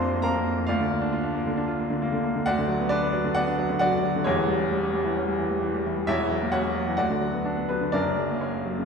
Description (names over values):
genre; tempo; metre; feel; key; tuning
classical, virtuoso piano study; 133 BPM; 4/4; rubato; B minor; A4 = 440 Hz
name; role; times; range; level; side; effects
clear baby grand piano; solo; 0.0-8.8 s; E1 to D6; -23 LUFS; equal; none
room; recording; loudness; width
wet scoring stage reverb, RT60 1.7 s; heard from further back in the room; -23 LUFS; side -5 dB against mid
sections
0.0-8.8 A section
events
none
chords
0.0 Bb; 0.7 Bb/D; 2.5 Bm/D; 4.2 C#dim/E; 6.1 F#7/E; 7.0 Bm/D; 7.9 F#